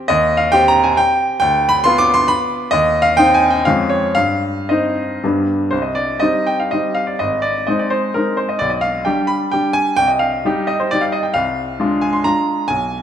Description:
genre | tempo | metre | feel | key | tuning
classical, romantic triple-time dance for piano with dotted rhythms | 105-144 BPM | 3/4 | rubato | C minor | A4 = 440 Hz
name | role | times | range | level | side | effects
clear baby grand piano | solo | 0.0-13.0 s | Ab1 to D6 | -14 LUFS | equal | none
room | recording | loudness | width
wet recital hall reverb, RT60 1.7 s | none | -14 LUFS | side -9 dB against mid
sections
0.0-5.7 A section; 5.7-13.0 B section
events
none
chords
0.1 Cm/Eb; 1.4 Dm6; 2.7 Cm/Eb; 3.7 Db/F; 4.2 Cm/G; 5.2 G; 5.7 Cm; 7.2 Ab; 8.6 G/B; 10.0 Cm; 11.4 Dm7b5/C

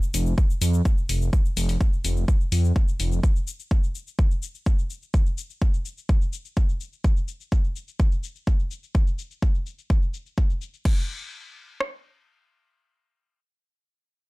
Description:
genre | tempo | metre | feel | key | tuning
melodic techno | 126 BPM | 4/4 | straight | unclear | A4 = 435 Hz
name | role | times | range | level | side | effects
house drum kit | drums | 0.0-11.0 s | crash cymbal, hi-hat, shaker | -34 LUFS | left 5 dB | sidechain pumping on perc, low-pass filter on perc, small room ambience, sidechain pumping on hats, low-pass filter on hats, sidechain pumping on cymbals, low-pass filter on cymbals
swelling detuned saw bass | bass | 0.1-3.2 s | F1 to F2 | -21 LUFS | equal | sidechain pumping
house drum kit | drums | 0.4-11.9 s | kick drum, rim click | -21 LUFS | equal | small room ambience
room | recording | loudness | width
little or no reverb | none | -22 LUFS | side -23 dB against mid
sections
0.0-10.9 A section; 10.9-14.3 B section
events
none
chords
none

